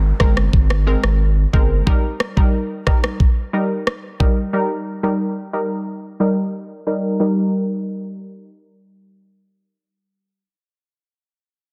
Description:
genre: dancehall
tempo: 90 BPM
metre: 4/4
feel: straight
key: Eb major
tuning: A4 = 437 Hz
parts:
  - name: saturated sub bass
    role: bass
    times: 0.0-1.8 s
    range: G1 to Ab1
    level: -19 LUFS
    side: equal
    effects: none
  - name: downlifter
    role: sound effects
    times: 0.0-1.9 s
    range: none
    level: -47 LUFS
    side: equal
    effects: none
  - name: analog pluck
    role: accompaniment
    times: 0.2-10.4 s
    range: G3 to Bb4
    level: -23 LUFS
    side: equal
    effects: chorus, low-pass filter
  - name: afro-pop drum kit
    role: drums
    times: 0.2-4.4 s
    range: kick drum, rim click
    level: -18 LUFS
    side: equal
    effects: soft clipping on snare
room: little or no reverb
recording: dense, heavily limited modern master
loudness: -19 LUFS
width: mono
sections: 0.0-7.2 A section; 7.2-9.9 B section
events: filter sweep on synth pluck 0.0-7.2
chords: 0.0 Abadd9; 1.9 Eb

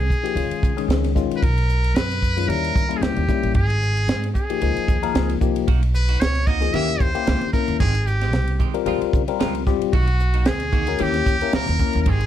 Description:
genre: electric jazz fusion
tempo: 113 BPM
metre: 4/4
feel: swing 55% on 16ths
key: unclear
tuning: A4 = 439 Hz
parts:
  - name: trumpet with metal mute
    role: melody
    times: 0.0-12.3 s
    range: F#4 to Fb5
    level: -25 LUFS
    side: equal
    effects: none
  - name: upright bass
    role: bass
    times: 0.0-12.3 s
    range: Ab1 to Db3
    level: -22 LUFS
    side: right 1 dB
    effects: none
  - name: crisp fusion drum kit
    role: drums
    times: 0.1-12.3 s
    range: hi-hat, kick drum, ride cymbal, snare drum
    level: -23 LUFS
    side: right 1 dB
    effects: none
  - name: bell-like tine electric piano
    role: accompaniment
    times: 0.2-12.1 s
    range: Eb3 to Bb4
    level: -24 LUFS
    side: left 14 dB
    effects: phaser
  - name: clean electric guitar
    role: stabs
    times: 5.7-12.3 s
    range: Eb3 to G4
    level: -31 LUFS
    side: right 12 dB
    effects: lush chorus
room: light reverb, small room ambience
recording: dark, warm production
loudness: -18 LUFS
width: side -11 dB against mid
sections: 0.0-12.3 A section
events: none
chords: 0.4 Db; 1.4 Bmaj7(no3); 2.5 Eb7b9; 3.6 Ab5; 4.6 Dbmaj7; 5.7 Bmaj7; 6.7 Eb7b9; 7.8 Abmaj7; 8.9 Dbmaj7; 9.9 Bmaj7; 11.0 Eb7b9

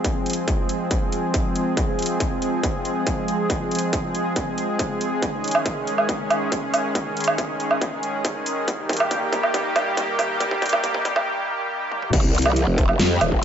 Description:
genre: heavy wobble dubstep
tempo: 139 BPM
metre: 4/4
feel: half-time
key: F minor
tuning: A4 = 440 Hz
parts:
  - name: supersaw pad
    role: sustained chords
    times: 0.0-13.4 s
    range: Eb3 to Ab4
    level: -24 LUFS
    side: equal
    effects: sidechain pumping, low-pass filter
  - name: dubstep drum kit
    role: drums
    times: 0.0-13.3 s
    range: crash cymbal, hi-hat, snare drum, toms, woodblock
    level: -24 LUFS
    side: right 2 dB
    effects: studio reverb
  - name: electronic kick drum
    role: drums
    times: 0.0-13.4 s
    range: none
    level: -25 LUFS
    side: equal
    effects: distortion, studio reverb
  - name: growl bass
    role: bass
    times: 12.1-13.4 s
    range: Eb1 to F2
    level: -20 LUFS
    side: equal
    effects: chorus, overdrive
room: light reverb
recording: high-pass filter, nothing above 7.7 kHz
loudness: -20 LUFS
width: side -8 dB against mid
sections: 0.0-12.1 A section; 12.1-13.4 B section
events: build-up 0.0-12.1; filter sweep 0.0-12.1; drum fill 5.2-11.3, 11.9; break 11.3-12.1; drop 12.1-13.4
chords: 0.0 Fm; 5.2 Dbsus2; 8.7 Eb; 12.1 Fmadd9

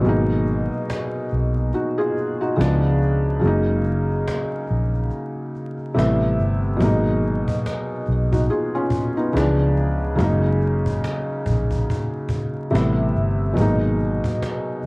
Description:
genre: lo-fi hip hop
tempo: 71 BPM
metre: 4/4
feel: swing 57% on 16ths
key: G# dorian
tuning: A4 = 440 Hz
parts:
  - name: felt-muted upright piano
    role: accompaniment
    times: 0.0-14.9 s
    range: B2 to G#4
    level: -21 LUFS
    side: equal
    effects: none
  - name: vintage muted fingered electric bass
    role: bass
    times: 0.0-14.2 s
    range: F#1 to C#2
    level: -21 LUFS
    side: equal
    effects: none
  - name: cajon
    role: drums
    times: 0.0-14.9 s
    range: none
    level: -28 LUFS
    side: equal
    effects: cassette tape
room: light reverb, small room ambience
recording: home recording on cassette, vinyl crackle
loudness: -18 LUFS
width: side -31 dB against mid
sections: 0.0-14.9 A section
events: break 0.0-6.8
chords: 0.1 G#m9; 2.6 C#7b9; 3.4 F#69; 6.0 Am9; 6.8 G#m9; 9.3 C#7b9; 10.2 F#69; 12.7 Am9; 13.6 G#m9

